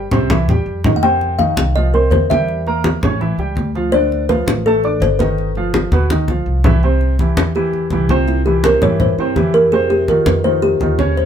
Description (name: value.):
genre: Afro-Cuban jazz.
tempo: 166 BPM.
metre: 4/4.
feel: straight.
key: C major.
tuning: A4 = 442 Hz.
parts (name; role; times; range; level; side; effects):
warm upright piano; accompaniment; 0.0-11.3 s; B2 to D6; -19 LUFS; right 2 dB; none.
upright bass; bass; 0.0-11.3 s; G1 to G2; -19 LUFS; equal; none.
congas; percussion; 0.1-11.3 s; none; -18 LUFS; left 1 dB; none.
kalimba; melody; 1.0-11.3 s; E4 to G5; -16 LUFS; left 1 dB; none.
room: moderate studio reverb, RT60 0.5 s.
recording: band playing live in one room.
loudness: -13 LUFS.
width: side -8 dB against mid.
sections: 0.0-6.8 A section; 6.8-11.3 B section.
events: drum fill 0.0-1.0, 5.9-6.8; kalimba solo 6.8-11.3.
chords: 0.3 C; 2.5 Edim; 3.2 A7; 3.9 Dm7; 5.4 Gaug7; 6.8 C; 9.7 F5.